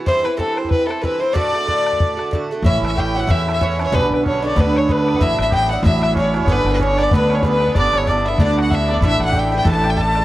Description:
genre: celtic folk, Celtic reel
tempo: 188 BPM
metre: 4/4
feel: swing 58% on 8ths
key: unclear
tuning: A4 = 442 Hz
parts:
  - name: Irish bouzouki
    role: accompaniment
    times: 0.0-10.2 s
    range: G2 to F#4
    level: -22 LUFS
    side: right 3 dB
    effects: plate reverb
  - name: rich fiddle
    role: melody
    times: 0.1-10.2 s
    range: A4 to A5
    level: -20 LUFS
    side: equal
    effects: plate reverb
  - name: warm fiddle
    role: second line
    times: 0.1-10.2 s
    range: A4 to A5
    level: -25 LUFS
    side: left 4 dB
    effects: plate reverb, tape echo
  - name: bodhran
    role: percussion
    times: 0.1-10.2 s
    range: none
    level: -20 LUFS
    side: left 1 dB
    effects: none
  - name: upright bass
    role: bass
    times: 2.6-10.2 s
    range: G1 to E2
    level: -20 LUFS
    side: equal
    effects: none
  - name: hammered dulcimer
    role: second line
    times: 2.7-10.2 s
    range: B3 to A4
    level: -26 LUFS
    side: right 4 dB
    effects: plate reverb
room: moderate studio reverb, RT60 0.6 s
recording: worn, warbling old tape, cassette tape, warbly pitch drift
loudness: -15 LUFS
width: side -15 dB against mid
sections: 0.0-2.6 A section; 2.6-10.2 B section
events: none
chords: 0.1 C; 1.4 D; 2.6 A; 3.9 G/B; 5.2 Dadd9/A; 6.5 G; 9.0 Dsus2/A

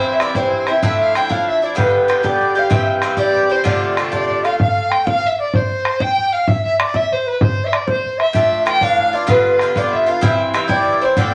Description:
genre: celtic folk, Celtic jig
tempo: 128 BPM (dotted quarters)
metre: 6/8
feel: straight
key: unclear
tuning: A4 = 440 Hz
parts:
  - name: mellow baroque flute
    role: melody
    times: 0.0-11.3 s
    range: B4 to G5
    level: -20 LUFS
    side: equal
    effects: none
  - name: dark fiddle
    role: second line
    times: 0.0-11.3 s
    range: B4 to G5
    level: -24 LUFS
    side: equal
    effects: none
  - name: Irish bouzouki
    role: accompaniment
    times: 0.0-5.1, 8.3-11.3 s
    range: G2 to G4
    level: -21 LUFS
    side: equal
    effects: none
  - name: bodhran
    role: percussion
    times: 0.0-11.2 s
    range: none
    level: -22 LUFS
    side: equal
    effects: none
room: wet studio reverb, RT60 0.6 s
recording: none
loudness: -16 LUFS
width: mono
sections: 0.0-4.6 A section; 4.6-11.3 A section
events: none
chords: 0.0 C; 0.8 Dmadd9; 1.8 G; 2.7 C; 3.7 Dm7; 4.6 N.C.; 8.4 Dmadd9; 9.3 G7; 10.2 C

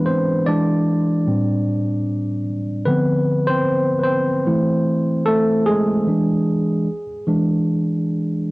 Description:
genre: R&B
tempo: 75 BPM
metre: 4/4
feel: swing 55% on 16ths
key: unclear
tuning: A4 = 440 Hz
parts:
  - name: barky tine electric piano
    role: solo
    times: 0.0-8.5 s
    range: A2 to D5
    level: -17 LUFS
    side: equal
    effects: cassette tape
room: light reverb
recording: home recording on cassette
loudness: -17 LUFS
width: side -22 dB against mid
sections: 0.0-8.5 A section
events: tine electric piano solo 0.0-8.5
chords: 0.5 E7; 1.3 Am7; 2.9 Dm7; 4.5 C6/E; 6.1 E7

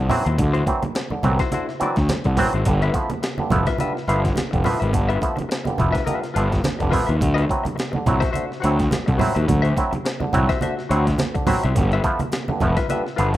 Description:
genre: funk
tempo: 106 BPM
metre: 4/4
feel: swing 56% on 16ths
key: unclear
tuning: A4 = 437 Hz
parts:
  - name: auto-wah clav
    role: stabs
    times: 0.0-13.4 s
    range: G2 to E4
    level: -25 LUFS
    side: right 2 dB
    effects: none
  - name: fuzz picked electric bass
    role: bass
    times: 0.0-13.4 s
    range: F1 to D#2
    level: -21 LUFS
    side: equal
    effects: overdrive
  - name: semi-hollow electric guitar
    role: accompaniment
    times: 0.1-13.4 s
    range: E4 to F#5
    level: -28 LUFS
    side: left 6 dB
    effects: spring reverb
  - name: breakbeat sampler-style drum kit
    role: drums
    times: 0.1-13.4 s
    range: hi-hat, kick drum, snare drum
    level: -26 LUFS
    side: equal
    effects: none
  - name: congas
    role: percussion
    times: 0.1-13.3 s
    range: none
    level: -27 LUFS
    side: right 3 dB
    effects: none
room: little or no reverb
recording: rough home demo mix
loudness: -18 LUFS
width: side -14 dB against mid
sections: 0.0-13.4 A section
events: none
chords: 0.0 D9; 2.7 G13; 7.2 D9; 11.8 G13

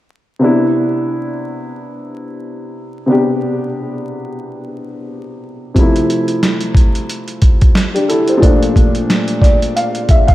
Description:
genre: hip hop, boom-bap hip-hop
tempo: 90 BPM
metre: 4/4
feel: swing 56% on 16ths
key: C major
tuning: A4 = 440 Hz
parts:
  - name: dark upright piano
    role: accompaniment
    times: 0.4-10.3 s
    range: Bb2 to F5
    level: -16 LUFS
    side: equal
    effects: high-pass filter, low-pass filter
  - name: boom bap sampler-style drum kit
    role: drums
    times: 5.8-10.3 s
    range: hi-hat, kick drum, snare drum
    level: -12 LUFS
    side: equal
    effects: none
room: moderate plate reverb, RT60 2.7 s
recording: dreamy mix soaked in reverb, vinyl crackle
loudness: -11 LUFS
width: side -15 dB against mid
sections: 0.4-10.3 A section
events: upright piano fill 9.1-10.3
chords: 0.4 Cmaj9; 5.8 Fmaj7/C; 8.4 Bbmaj7

